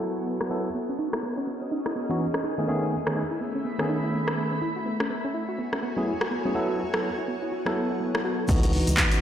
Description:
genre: deep house.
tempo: 124 BPM.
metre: 4/4.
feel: swing 60% on 16ths.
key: unclear.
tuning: A4 = 440 Hz.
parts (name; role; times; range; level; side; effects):
tine electric piano; stabs; 0.0-9.2 s; D#3 to A4; -28 LUFS; equal; ping-pong delay.
granular cloud pad; texture; 0.0-8.5 s; A3 to B5; -32 LUFS; left 1 dB; built-in reverb, sidechain pumping.
punchy analog drum machine; drums; 0.4-9.2 s; crash cymbal, handclaps, hi-hat, rim click; -30 LUFS; equal; none.
soft round pluck; arpeggios; 0.7-9.2 s; B3 to A4; -32 LUFS; right 2 dB; chorus, sidechain pumping, tape echo.
smooth synth bass; bass; 8.5-8.9 s; C#2; -25 LUFS; equal; sidechain pumping.
electronic kick drum; drums; 8.5-9.1 s; none; -23 LUFS; equal; none.
egg shaker; percussion; 8.5-9.2 s; none; -39 LUFS; left 3 dB; none.
room: moderate lush hall reverb, RT60 1.9 s.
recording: played on a big sound system in a bare room, stone room reverb, low-pass filter.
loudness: -24 LUFS.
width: side -10 dB against mid.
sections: 0.0-8.5 A section.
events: filter sweep on drum 0.0-8.5; filter sweep 0.0-8.5.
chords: 0.0 F#m11; 0.7 C#m11; 2.4 Amaj9#11; 4.6 F#m11; 8.5 C#m11.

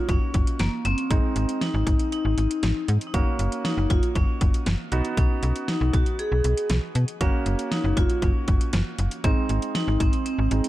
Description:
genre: synth-pop.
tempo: 118 BPM.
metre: 4/4.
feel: straight.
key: F# major.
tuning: A4 = 444 Hz.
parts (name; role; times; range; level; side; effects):
vibraphone with hard mallets; melody; 0.0-10.7 s; A#3 to G#4; -28 LUFS; left 1 dB; shimmer reverb, analog delay.
warm concert grand piano; accompaniment; 0.0-10.7 s; G#3 to F#4; -32 LUFS; right 4 dB; shimmer reverb.
slap-like FM bass; bass; 0.1-10.6 s; F#1 to B2; -24 LUFS; equal; none.
pop drum kit; drums; 0.1-10.7 s; hi-hat, kick drum, snare drum; -24 LUFS; equal; none.
room: light reverb.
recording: none.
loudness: -21 LUFS.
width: side -15 dB against mid.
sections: 0.0-10.7 A section.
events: none.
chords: 0.0 F#; 1.1 G#; 3.1 F#; 4.9 B6; 7.2 F#; 9.2 G#.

